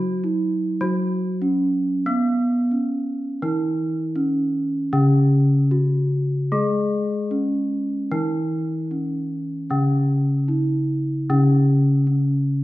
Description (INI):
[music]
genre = gamelan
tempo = 75-106 BPM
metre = 4/4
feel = straight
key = C# slendro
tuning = A4 = 441 Hz
[part]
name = gamelan-type bronze metallophone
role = melody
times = 0.0-12.6 s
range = B3-25c to G#4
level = -23 LUFS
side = right 2 dB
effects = none
[part]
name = gamelan-type bronze metallophone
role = accompaniment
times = 0.0-12.6 s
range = C#3 to B3-25c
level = -21 LUFS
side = left 1 dB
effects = none
[sound]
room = wet recital hall reverb, RT60 1.5 s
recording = minimal, uncompressed stereo recording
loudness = -19 LUFS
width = side -16 dB against mid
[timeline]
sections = 0.0-4.9 A section; 4.9-12.6 B section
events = none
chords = none